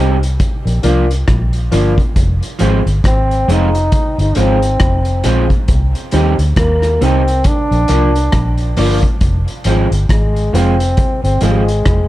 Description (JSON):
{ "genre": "roots reggae", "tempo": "68 BPM", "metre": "4/4", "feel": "swing 58% on 16ths", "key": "F dorian", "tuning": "A4 = 441 Hz", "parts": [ { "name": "electric guitar at the edge of break-up", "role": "accompaniment", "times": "0.0-11.6 s", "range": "F3 to G4", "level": "-20 LUFS", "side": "right 4 dB", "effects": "dub echo" }, { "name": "dark upright piano", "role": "stabs", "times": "0.0-11.7 s", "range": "Eb4 to D5", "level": "-23 LUFS", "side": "left 7 dB", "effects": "none" }, { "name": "vintage muted fingered electric bass", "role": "bass", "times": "0.0-12.1 s", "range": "F1 to Eb2", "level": "-14 LUFS", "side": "equal", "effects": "none" }, { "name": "vintage drum kit", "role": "drums", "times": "0.2-12.1 s", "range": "hi-hat, kick drum, rim click", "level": "-17 LUFS", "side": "equal", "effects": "none" }, { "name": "warm trombone", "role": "melody", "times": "3.1-12.1 s", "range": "G3 to Eb4", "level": "-18 LUFS", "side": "equal", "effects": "dub echo" } ], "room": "light reverb, small room ambience", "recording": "dark, warm production", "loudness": "-11 LUFS", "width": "side -15 dB against mid", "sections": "0.0-12.1 A section", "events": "none", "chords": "0.4 Bb; 2.2 Fm; 5.7 Cm; 7.5 Bb; 9.2 Fm", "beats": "0.40 1.28 | 2.16 3.04 3.92 4.81 | 5.69 6.57 7.45 8.33 | 9.22 10.10 10.98 11.86" }